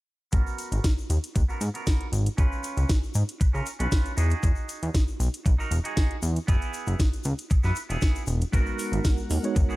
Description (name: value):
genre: nu-disco, nu disco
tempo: 117 BPM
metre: 4/4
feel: straight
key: G# minor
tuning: A4 = 439 Hz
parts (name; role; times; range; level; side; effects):
- clean electric guitar; riff; 0.3-9.8 s; B3 to B4; -35 LUFS; right 3 dB; wide subtle chorus, low-pass filter
- chorused synth bass; bass; 0.3-9.6 s; E1 to C#3; -25 LUFS; equal; none
- electronic kick drum; drums; 0.3-9.7 s; none; -23 LUFS; equal; none
- house drum kit; drums; 0.3-9.7 s; hi-hat, snare drum; -34 LUFS; equal; overdrive
- egg shaker; percussion; 0.3-9.8 s; none; -42 LUFS; left 5 dB; none
- barky tine electric piano; accompaniment; 8.5-9.8 s; G#3 to C#5; -30 LUFS; right 3 dB; fast stereo tremolo, sidechain pumping
- lush unison pad; sustained chords; 8.5-9.8 s; A#4 to F#5; -41 LUFS; right 1 dB; chorus, sidechain pumping
room: digital ambience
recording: none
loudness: -23 LUFS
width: side -19 dB against mid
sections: 0.3-9.8 A section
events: filter sweep on clean electric guitar 0.3-9.8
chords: 0.3 G#m9; 2.4 C#7; 4.2 Emaj9; 6.5 F#9sus4 (rootless); 8.5 G#m9